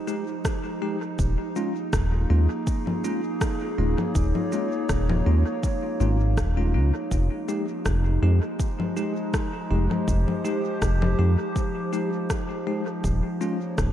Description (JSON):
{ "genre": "ambient dub", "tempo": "81 BPM", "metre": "4/4", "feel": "swing 54% on 16ths", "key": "F minor", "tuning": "A4 = 444 Hz", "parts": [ { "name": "warbly tape-like pad", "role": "sustained chords", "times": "0.0-13.9 s", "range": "F3 to Db5", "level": "-29 LUFS", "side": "right 1 dB", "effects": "chorus, built-in reverb" }, { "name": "bell-like tine electric piano", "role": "stabs", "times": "0.1-13.6 s", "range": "Ab3 to G4", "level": "-31 LUFS", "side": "left 2 dB", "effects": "fast stereo tremolo, dub echo" }, { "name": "electronic cabasa, rim click and congas", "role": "drums", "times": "0.1-13.9 s", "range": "none", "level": "-33 LUFS", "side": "left 2 dB", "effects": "studio reverb, dub echo" }, { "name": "electronic kick drum", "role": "drums", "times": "0.4-13.9 s", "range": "none", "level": "-27 LUFS", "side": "equal", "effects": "overdrive, studio reverb" }, { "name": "round analog bass", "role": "bass", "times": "1.2-13.9 s", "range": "Eb1 to F2", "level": "-21 LUFS", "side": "equal", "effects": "none" } ], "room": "light reverb", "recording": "none", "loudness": "-22 LUFS", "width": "side -11 dB against mid", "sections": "0.0-13.9 A section", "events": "none", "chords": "0.0 Fm9; 1.2 Eb9sus4; 7.1 Fm9; 13.0 Eb9sus4" }